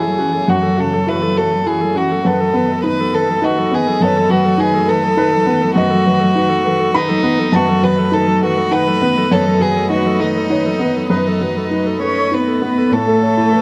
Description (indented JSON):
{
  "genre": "neoclassical piano and strings",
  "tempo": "102 BPM",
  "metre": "3/4",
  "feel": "rubato",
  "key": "unclear",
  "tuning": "A4 = 445 Hz",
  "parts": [
    { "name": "rich violin", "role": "melody", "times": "0.0-13.6 s", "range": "D#4 to C#5", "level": "-20 LUFS", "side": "equal", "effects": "tape echo" },
    { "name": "dark cello", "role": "second line", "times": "0.0-13.6 s", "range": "D#3 to C#4", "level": "-24 LUFS", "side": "equal", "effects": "none" },
    { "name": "dark viola", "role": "accompaniment", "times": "0.0-13.6 s", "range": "E3 to B4", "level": "-25 LUFS", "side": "equal", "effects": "none" },
    { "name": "felt-muted upright piano", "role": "accompaniment", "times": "0.0-13.6 s", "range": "F#2 to B5", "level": "-19 LUFS", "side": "equal", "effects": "none" },
    { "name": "dark chamber string section", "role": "sustained chords", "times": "0.0-13.6 s", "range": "E3 to D#5", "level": "-30 LUFS", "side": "equal", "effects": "none" }
  ],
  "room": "light reverb",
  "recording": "close, detailed microphones",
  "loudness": "-15 LUFS",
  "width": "mono",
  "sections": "0.0-12.9 A section",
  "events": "none",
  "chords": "0.0 F#m7; 2.3 B7/F#; 12.9 A",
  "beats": "| 0.50 1.09 1.68 | 2.26 2.85 3.44 | 4.03 4.61 5.19 | 5.78 6.37 6.95 | 7.54 8.13 8.72 | 9.31 9.90 10.50 | 11.11 11.71 12.32 | 12.93 13.53"
}